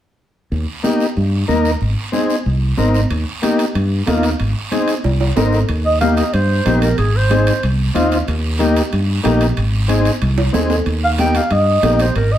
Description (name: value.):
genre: latin, cumbia.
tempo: 186 BPM.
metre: 4/4.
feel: straight.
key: Eb major.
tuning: A4 = 440 Hz.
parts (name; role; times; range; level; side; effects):
fingered electric bass; bass; 0.5-12.4 s; Ab1 to G2; -17 LUFS; equal; none.
congas; percussion; 0.5-12.3 s; none; -23 LUFS; equal; none.
guiro; percussion; 0.5-12.4 s; none; -30 LUFS; right 5 dB; none.
combo organ; accompaniment; 0.8-12.1 s; Bb3 to Bb4; -19 LUFS; left 1 dB; none.
timbales; percussion; 3.1-12.3 s; none; -26 LUFS; right 3 dB; none.
breathy clarinet; melody; 5.9-7.6, 11.0-12.4 s; Ab4 to G5; -17 LUFS; right 1 dB; none.
room: wet studio reverb, RT60 0.8 s.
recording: heard from further back in the room.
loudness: -14 LUFS.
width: side -11 dB against mid.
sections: 0.5-5.7 A section; 5.7-12.4 B section.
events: drum fill 5.0-5.7, 10.4-10.9.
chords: 0.5 Eb; 1.8 Ab; 3.1 Eb; 4.4 Ab; 5.7 Eb; 7.0 Ab; 8.3 Eb; 9.6 Ab; 10.9 Eb.